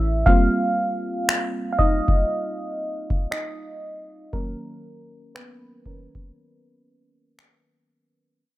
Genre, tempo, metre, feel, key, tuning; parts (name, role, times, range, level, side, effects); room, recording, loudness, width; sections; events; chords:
contemporary R&B; 59 BPM; 4/4; swing 58% on 16ths; A4 = 440 Hz
mellow FM electric piano; accompaniment; 0.0-8.4 s; Eb3 to F5; -24 LUFS; right 1 dB; chorus, low-pass filter
booming analog drum machine; drums; 0.3-7.7 s; finger snaps, kick drum; -20 LUFS; equal
little or no reverb; -20 LUFS; side -16 dB against mid
0.0-8.4 A section
fade-out 0.0-8.4; FM electric piano solo 0.0-8.4; break 6.4-8.4
0.3 Eb69/G; 4.3 Cbmaj9